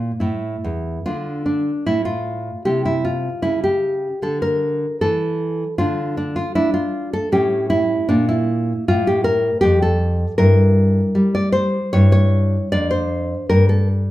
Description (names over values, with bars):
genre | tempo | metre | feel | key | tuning
classical, baroque-style dance for nylon-string guitar | 77 BPM | 3/4 | rubato | D minor | A4 = 439 Hz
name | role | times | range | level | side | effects
nylon-string guitar | solo | 0.0-14.1 s | E2 to D5 | -16 LUFS | equal | none
room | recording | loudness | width
moderate large studio reverb, RT60 0.9 s | band playing live in one room | -16 LUFS | side -15 dB against mid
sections
0.0-1.1 A section; 1.1-14.1 A section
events
none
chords
0.2 A5; 1.1 D5; 2.6 C; 3.4 A/C#; 5.8 N.C.; 7.3 A7; 8.1 Bb5; 10.4 Edim/G; 12.7 Dm/F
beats
0.18 | 1.06 1.86 2.64 | 3.43 4.23 5.01 | 5.78 6.55 7.33 | 8.10 8.88 9.64 | 10.40 11.15 11.93 | 12.71 13.48